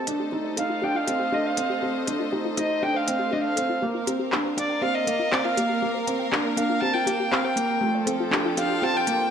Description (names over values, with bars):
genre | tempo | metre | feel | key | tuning
piano and strings electronica | 120 BPM | 4/4 | straight | unclear | A4 = 440 Hz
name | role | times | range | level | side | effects
rich symphonic string section | sustained chords | 0.0-9.3 s | F3 to G5 | -30 LUFS | equal | none
soft round pluck | arpeggios | 0.0-9.3 s | F4 to G5 | -32 LUFS | left 4 dB | chorus, digital delay
felt-muted upright piano | riff | 0.0-9.3 s | A3 to Eb4 | -27 LUFS | right 1 dB | none
round analog bass | bass | 0.0-9.3 s | none | barely audible | none | none
organic electronic drum kit | drums | 0.1-9.2 s | handclaps, hi-hat | -28 LUFS | equal | none
rich violin | melody | 0.6-9.3 s | D5 to A5 | -26 LUFS | equal | low-pass filter
room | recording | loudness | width
wet echo chamber reverb, RT60 2.1 s | none | -22 LUFS | side -8 dB against mid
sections
0.0-9.3 A section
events
build-up 0.0-9.3; filter sweep on synth arpeggio sound 0.0-9.3; filter sweep on violin 0.0-9.3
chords
0.0 Adim; 3.8 Bb; 7.8 Fadd9